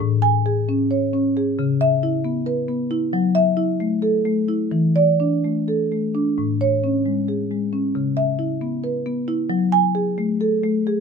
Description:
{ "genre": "classical, contemporary piece for solo marimba", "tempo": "250-275 BPM (eighths)", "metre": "7/8", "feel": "rubato", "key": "A major", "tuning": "A4 = 436 Hz", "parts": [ { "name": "marimba with soft mallets", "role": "solo", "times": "0.0-11.0 s", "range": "A2 to G#5", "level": "-18 LUFS", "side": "equal", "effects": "none" } ], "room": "light reverb", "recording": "minimal, uncompressed stereo recording", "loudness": "-18 LUFS", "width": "side -6 dB against mid", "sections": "0.0-6.4 A section; 6.4-11.0 B section", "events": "none", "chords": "0.0 Amaj7; 1.6 C#m7; 3.1 F#m7; 4.7 E7sus4; 6.4 Amaj7; 8.0 C#m7; 9.5 F#madd9" }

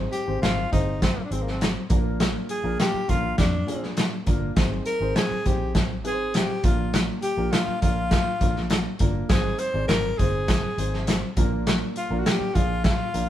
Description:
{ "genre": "uptempo 1960s-style soul", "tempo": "101 BPM", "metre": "4/4", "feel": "straight", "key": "unclear", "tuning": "A4 = 440 Hz", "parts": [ { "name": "dark upright piano", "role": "accompaniment", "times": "0.0-13.3 s", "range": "Ab2 to D5", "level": "-31 LUFS", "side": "equal", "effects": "none" }, { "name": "vintage muted fingered electric bass", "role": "bass", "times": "0.0-13.3 s", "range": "G1 to Bb2", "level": "-29 LUFS", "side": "equal", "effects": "none" }, { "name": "breathy tenor saxophone", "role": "melody", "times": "0.1-13.3 s", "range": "Bb3 to C5", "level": "-28 LUFS", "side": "left 1 dB", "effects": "none" }, { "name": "raw garage drum kit", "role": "drums", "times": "0.1-13.3 s", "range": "hi-hat, kick drum, snare drum", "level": "-23 LUFS", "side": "equal", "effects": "none" } ], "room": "light reverb", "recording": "band playing live in one room", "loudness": "-21 LUFS", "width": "side -12 dB against mid", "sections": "0.0-13.3 A section", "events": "none", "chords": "0.0 Ab; 1.9 Bb; 4.6 Ab; 6.6 Bb; 9.3 Ab; 11.4 Bb" }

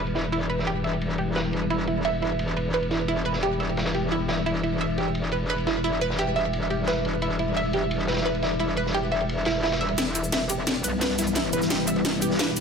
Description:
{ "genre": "dark technical drum and bass", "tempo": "174 BPM", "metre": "4/4", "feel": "straight", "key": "E minor", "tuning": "A4 = 441 Hz", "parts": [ { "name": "deep dark ambient pad", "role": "sustained chords", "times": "0.0-12.6 s", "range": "G3 to E5", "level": "-29 LUFS", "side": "left 2 dB", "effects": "chorus, built-in reverb, sidechain pumping" }, { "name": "analog pluck", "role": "arpeggios", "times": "0.0-12.5 s", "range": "E4 to E5", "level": "-27 LUFS", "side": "right 2 dB", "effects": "chorus, phaser, sidechain pumping, digital delay" }, { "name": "metallic wobble bass", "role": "bass", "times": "0.0-12.6 s", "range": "E1 to B1", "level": "-29 LUFS", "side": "equal", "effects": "chorus, tube saturation" }, { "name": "crunchy breakbeat drum kit", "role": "drums", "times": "0.1-12.6 s", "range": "ride cymbal, snare drum", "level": "-34 LUFS", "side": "left 1 dB", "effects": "high-pass filter on cymbals, low-pass filter on cymbals, studio reverb, high-pass filter on snare, low-pass filter on snare, high-pass filter on room, low-pass filter on room" }, { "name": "drum and bass drum kit", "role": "drums", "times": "10.0-12.6 s", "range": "hi-hat, shaker, snare drum", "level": "-26 LUFS", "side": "equal", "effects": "overdrive, low-pass filter on snare, studio reverb, low-pass filter on hats, low-pass filter on perc" }, { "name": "electronic kick drum", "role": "drums", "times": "10.0-12.5 s", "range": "none", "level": "-38 LUFS", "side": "equal", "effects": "none" } ], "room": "light reverb", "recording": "none", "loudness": "-23 LUFS", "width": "side -6 dB against mid", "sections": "0.0-10.0 A section; 10.0-12.6 B section", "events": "filter sweep on ambient pad 0.0-10.0; build-up 10.0-12.6; drum fill 10.0-12.6", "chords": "0.0 Em" }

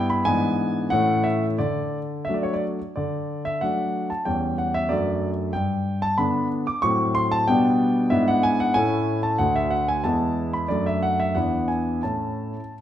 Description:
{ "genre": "classical-period piano sonatina", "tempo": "86-96 BPM", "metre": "2/4", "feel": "rubato", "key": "D major, A major from 8.1 s", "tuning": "A4 = 441 Hz", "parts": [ { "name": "warm concert grand piano", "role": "solo", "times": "0.0-12.7 s", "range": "D2 to D6", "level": "-21 LUFS", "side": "equal", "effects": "none" } ], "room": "moderate recital hall reverb, RT60 1.3 s", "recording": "minimal, uncompressed stereo recording", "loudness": "-21 LUFS", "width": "side -11 dB against mid", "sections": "0.0-3.0 A section; 3.0-12.8 A section", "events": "none", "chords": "0.3 E7/G#; 0.9 A; 1.6 D; 4.3 C#dim/E; 4.9 D/F#; 5.6 G; 6.8 F#dim/A; 7.5 G/B; 8.1 E7/G#; 8.8 A; 9.4 D; 10.0 E; 10.7 D/F#; 11.4 E7; 12.0 A" }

